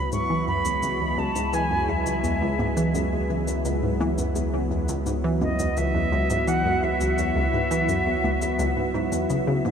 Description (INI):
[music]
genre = ambient, sequencer-driven space music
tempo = 85 BPM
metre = 4/4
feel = straight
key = unclear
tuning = A4 = 441 Hz
[part]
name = silver concert flute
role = melody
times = 0.0-9.3 s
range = D#5 to C#6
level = -27 LUFS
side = equal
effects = tape echo
[part]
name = lush unison pad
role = sustained chords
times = 0.0-9.7 s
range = F#3 to F#4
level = -27 LUFS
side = equal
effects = chorus
[part]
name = analog pluck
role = riff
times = 0.0-9.7 s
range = C#2 to E3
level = -27 LUFS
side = equal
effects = chorus, tape echo
[part]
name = warm sub bass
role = bass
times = 0.0-9.7 s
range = C#2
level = -30 LUFS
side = equal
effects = none
[part]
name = cabasa and congas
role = percussion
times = 0.1-9.7 s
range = none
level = -35 LUFS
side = left 2 dB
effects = tape echo
[sound]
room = wet huge ambient reverb, RT60 7.0 s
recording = none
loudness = -22 LUFS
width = side -7 dB against mid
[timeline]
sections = 0.0-9.7 A section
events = none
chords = 0.0 C#m